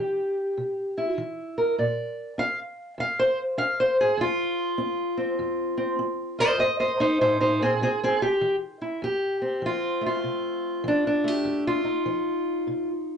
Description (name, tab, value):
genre	acoustic country blues, solo or duo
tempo	99 BPM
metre	4/4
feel	swing 64% on 8ths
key	unclear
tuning	A4 = 440 Hz
part	fingerpicked steel-string acoustic guitar	solo	0.0-13.2 s	F2 to F5	-23 LUFS	equal	none
room	moderate small room ambience, RT60 0.5 s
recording	dark, warm production, nothing above 10.3 kHz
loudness	-23 LUFS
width	side -7 dB against mid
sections	0.0-9.0 A section; 9.0-13.2 B section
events	steel-string acoustic guitar solo 0.0-9.0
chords	0.0 C; 1.8 Bb; 4.2 F7(no3); 7.8 C; 9.0 F7